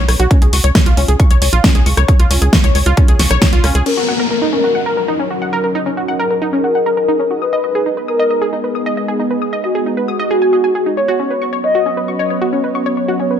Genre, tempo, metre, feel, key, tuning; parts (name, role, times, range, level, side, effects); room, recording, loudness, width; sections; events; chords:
uplifting trance; 135 BPM; 4/4; straight; Eb minor; A4 = 440 Hz
tight sequencer bass; bass; 0.0-3.8 s; B1 to Db2; -14 LUFS; equal; sidechain pumping
analog pluck; arpeggios; 0.1-13.4 s; Db4 to Eb6; -18 LUFS; equal; chorus, sidechain pumping, tape echo
big-room dance drum kit; drums; 0.1-4.0 s; crash cymbal, hi-hat, rim click, snare drum; -17 LUFS; equal
electronic kick drum; drums; 0.3-3.5 s; -12 LUFS; equal
warm velvety synth lead; second line; 3.9-13.4 s; Gb4 to Eb5; -17 LUFS; left 1 dB; chorus, ping-pong delay
lush unison pad; sustained chords; 4.7-13.4 s; Gb3 to Eb5; -21 LUFS; right 1 dB; chorus, sidechain pumping
downlifter; sound effects; 3.9-7.4 s; -22 LUFS; left 4 dB
light reverb, digital ambience; -12 LUFS; side -9 dB against mid
0.0-3.9 A section; 3.9-13.4 B section
filter sweep on analog synth pad 3.9-13.4
0.3 Db; 3.9 Ebm7; 7.4 Abm; 11.0 Bsus2